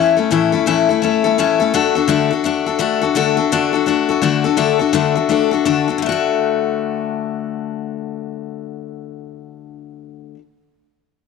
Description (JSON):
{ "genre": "rock", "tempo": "168 BPM", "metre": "4/4", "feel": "swing 62% on 8ths", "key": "D major", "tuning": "A4 = 442 Hz", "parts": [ { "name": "picked steel-string acoustic guitar", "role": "solo", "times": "0.0-10.4 s", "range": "A2 to A4", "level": "-16 LUFS", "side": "left 9 dB", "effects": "none" } ], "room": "light reverb", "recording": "none", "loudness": "-15 LUFS", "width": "side -4 dB against mid", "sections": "0.0-4.6 A section; 4.6-6.0 B section; 6.0-8.9 C section", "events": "none", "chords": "0.0 A; 1.7 D" }